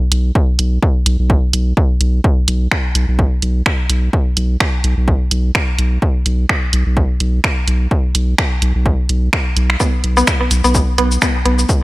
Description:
minimal techno; 127 BPM; 4/4; swing 56% on 16ths; A4 = 440 Hz
saturated sub bass; bass; 0.1-11.7 s; B1; -15 LUFS; equal; sidechain pumping
punchy analog drum machine; drums; 0.1-11.8 s; cabasa, finger snaps, hi-hat; -18 LUFS; right 1 dB
electronic kick drum; drums; 0.4-11.8 s; -16 LUFS; equal
mallet-like synth pluck; riff; 9.8-11.5 s; B3; -17 LUFS; equal; chorus, sidechain pumping, dub echo
little or no reverb; echo-heavy mix; -13 LUFS; side -20 dB against mid
0.0-11.8 A section

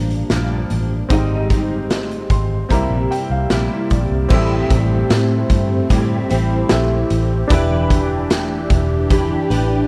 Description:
indie pop, bedroom pop; 75 BPM; 4/4; straight; A4 = 440 Hz
clear upright piano; accompaniment; 0.0-9.9 s; Ab3 to C6; -27 LUFS; equal
fingerpicked steel-string acoustic guitar; accompaniment; 0.0-9.9 s; G2 to B4; -24 LUFS; equal; ensemble chorus, vibrato effect
vintage muted fingered electric bass; bass; 0.0-9.8 s; E1 to A2; -22 LUFS; equal
raw garage drum kit; drums; 0.1-9.7 s; crash cymbal, hi-hat, kick drum, snare drum; -22 LUFS; equal
phased analog pad; sustained chords; 4.3-9.9 s; E3 to G4; -28 LUFS; equal; phaser, chorus
little or no reverb; -17 LUFS; mono
0.0-4.3 A section; 4.3-9.9 B section
upright piano fill 1.9-4.3
0.0 Gm7; 1.1 Abmaj7; 2.7 C7; 4.3 Am7; 7.5 Em7

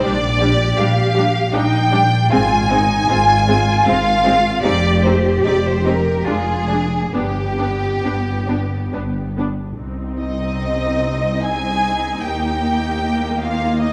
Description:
classical, slow romantic movement for string orchestra; 66-80 BPM; 3/4; rubato; C minor; A4 = 441 Hz
warm studio violin section; melody; 0.0-13.9 s; D4 to Ab5; -27 LUFS; equal
rich studio violin section; second line; 0.0-13.9 s; Eb4 to Ab5; -22 LUFS; equal
warm studio viola section; accompaniment; 0.0-13.9 s; G3 to Eb4; -26 LUFS; equal
warm studio cello section; bass; 0.0-13.9 s; C2 to G4; -26 LUFS; equal
warm studio double bass section; bass; 0.0-13.9 s; F1 to Eb2; -23 LUFS; equal
wet concert hall reverb, RT60 2.1 s; dark, warm production; -17 LUFS; mono
0.0-9.8 A section; 9.8-13.9 B section
0.0 Gm/Bb; 2.3 Fm/Ab; 4.6 Fm; 6.3 Ddim/F; 7.1 G; 9.8 Cm; 12.2 Eb

